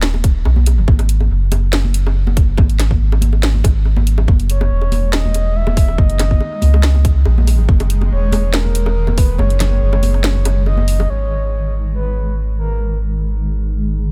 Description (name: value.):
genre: deep dubstep.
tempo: 141 BPM.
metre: 4/4.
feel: swing 53% on 16ths, half-time.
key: G# minor.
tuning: A4 = 440 Hz.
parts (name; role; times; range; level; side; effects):
soft dub sub bass; bass; 0.0-14.1 s; D#1 to C#2; -17 LUFS; equal; tube saturation.
garage drum kit; drums; 0.0-11.0 s; hi-hat, snare drum; -25 LUFS; equal; studio reverb.
bongos and congas; percussion; 0.1-11.1 s; none; -27 LUFS; equal; dub echo.
electronic kick drum; drums; 0.2-9.3 s; none; -15 LUFS; equal; studio reverb.
granular cloud pad; sustained chords; 5.0-14.1 s; D#3 to G#3; -29 LUFS; equal; built-in reverb.
breathy flute-like synth lead; melody; 4.5-13.0 s; A#4 to E5; -28 LUFS; equal; chorus, dub echo.
room: little or no reverb.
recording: none.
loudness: -15 LUFS.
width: mono.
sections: 0.0-11.1 A section; 11.1-14.1 B section.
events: kick drops out 9.4-11.1; filter sweep on ambient pad 11.1-14.1.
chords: 0.0 N.C.; 4.3 F#sus2; 11.1 G#madd9.